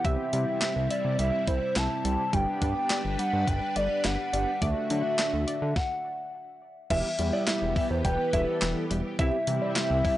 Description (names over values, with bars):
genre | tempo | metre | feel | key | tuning
synth-pop | 105 BPM | 4/4 | straight | E minor | A4 = 440 Hz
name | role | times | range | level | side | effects
hollow clarinet-like synth lead | melody | 0.0-10.2 s | B4 to A5 | -30 LUFS | equal | chorus, analog delay
mellow synth brass | accompaniment | 0.0-10.2 s | G3 to A4 | -34 LUFS | equal | chorus
string machine, full ensemble | sustained chords | 0.0-10.2 s | C3 to B4 | -35 LUFS | equal | ensemble chorus
analog pluck | arpeggios | 0.0-10.2 s | E3 to E5 | -36 LUFS | equal | chorus, phaser, analog delay
fat analog bass | bass | 0.0-10.0 s | E1 to D3 | -29 LUFS | equal | none
clean 12-bit digital drum machine | drums | 0.0-10.2 s | crash cymbal, handclaps, hi-hat, kick drum, snare drum | -30 LUFS | equal | none
dark concert grand piano | second line | 6.9-10.1 s | D5 to G5 | -33 LUFS | right 1 dB | analog delay
room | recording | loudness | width
digital ambience | dry, gritty hardware recording, transformer saturation, nothing above 10.6 kHz | -25 LUFS | side -14 dB against mid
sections
0.0-6.9 A section; 6.9-10.2 B section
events
stop 5.8-6.9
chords
0.0 C; 2.3 G; 4.6 D; 6.9 Em; 9.2 C